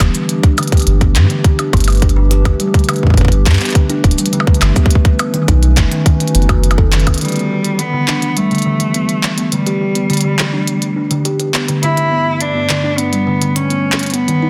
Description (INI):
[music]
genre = IDM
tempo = 104 BPM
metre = 4/4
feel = straight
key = E dorian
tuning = A4 = 440 Hz
[part]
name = warbly tape-like pad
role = sustained chords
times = 0.0-14.5 s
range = G2 to B4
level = -25 LUFS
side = equal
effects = chorus, built-in reverb
[part]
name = kalimba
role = arpeggios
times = 0.0-14.5 s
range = D3 to A4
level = -20 LUFS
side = equal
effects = low-pass filter, digital delay
[part]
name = warm sub bass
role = bass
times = 0.0-7.1 s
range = D1 to G2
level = -14 LUFS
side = equal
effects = tube saturation
[part]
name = electronic kick drum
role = drums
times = 0.0-7.2 s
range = none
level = -14 LUFS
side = equal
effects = overdrive
[part]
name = glitchy drum kit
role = drums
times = 0.0-14.4 s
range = handclaps, hi-hat, percussion blips, shaker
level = -22 LUFS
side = equal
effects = dub echo
[part]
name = rich cello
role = melody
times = 7.2-14.5 s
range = G3 to E4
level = -20 LUFS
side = equal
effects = vintage 12-bit sampler grit, digital delay
[sound]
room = light reverb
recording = dense, heavily limited modern master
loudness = -14 LUFS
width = mono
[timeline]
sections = 0.0-7.2 A section; 7.2-14.5 B section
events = drum fill 6.9; band accent 6.9; filter sweep on ambient pad 7.2-14.5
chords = 0.3 G; 2.6 Em7/G; 4.9 B7; 7.2 Em7; 11.8 Em7/G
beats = | 0.29 0.87 1.44 2.02 | 2.60 3.17 3.75 4.33 | 4.91 5.48 6.06 6.64 | 7.21 7.79 8.37 8.94 | 9.52 10.10 10.68 11.25 | 11.83 12.40 12.98 13.56 | 14.14